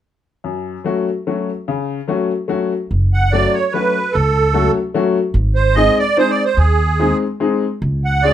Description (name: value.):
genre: musette waltz.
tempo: 146 BPM.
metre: 3/4.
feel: swing 54% on 8ths.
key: F# minor.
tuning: A4 = 441 Hz.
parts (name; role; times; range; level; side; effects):
bright upright piano; accompaniment; 0.4-8.3 s; F#2 to G#4; -18 LUFS; left 5 dB; none.
upright bass; bass; 2.9-8.3 s; F#1 to D#2; -15 LUFS; equal; none.
musette accordion; melody; 3.1-8.3 s; G#4 to F#5; -16 LUFS; right 5 dB; none.
room: moderate studio reverb, RT60 0.6 s.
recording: none.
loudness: -14 LUFS.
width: side -10 dB against mid.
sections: 0.4-2.9 A section; 2.9-8.3 B section.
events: none.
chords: 0.4 F#m; 5.4 G#; 7.8 C#sus4.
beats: | 0.44 0.85 1.26 | 1.67 2.08 2.49 | 2.90 3.32 3.73 | 4.14 4.55 4.95 | 5.35 5.76 6.17 | 6.58 6.99 7.40 | 7.82 8.23.